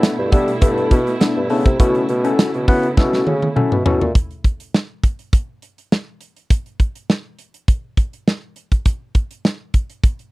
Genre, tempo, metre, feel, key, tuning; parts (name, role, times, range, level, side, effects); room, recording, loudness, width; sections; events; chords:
early-eighties boogie funk; 102 BPM; 4/4; straight; A4 = 440 Hz
overdriven tine electric piano; accompaniment; 0.0-4.1 s; B3 to E5; -20 LUFS; left 3 dB; phaser
dark studio string section; sustained chords; 0.0-4.1 s; B2 to E4; -25 LUFS; right 3 dB
modern studio drum kit; drums; 0.0-10.3 s; hi-hat, kick drum, snare drum, toms; -15 LUFS; equal
mellow bassoon; bass; 0.2-4.1 s; G2 to B3; -20 LUFS; equal
little or no reverb; dry, close 1970s-style studio recording; -16 LUFS; side -21 dB against mid
0.0-4.2 A section; 4.2-10.3 B section
drum fill 3.0-4.2; tine electric piano fill 3.3-4.2
0.0 G69; 1.8 B9sus4; 4.2 N.C.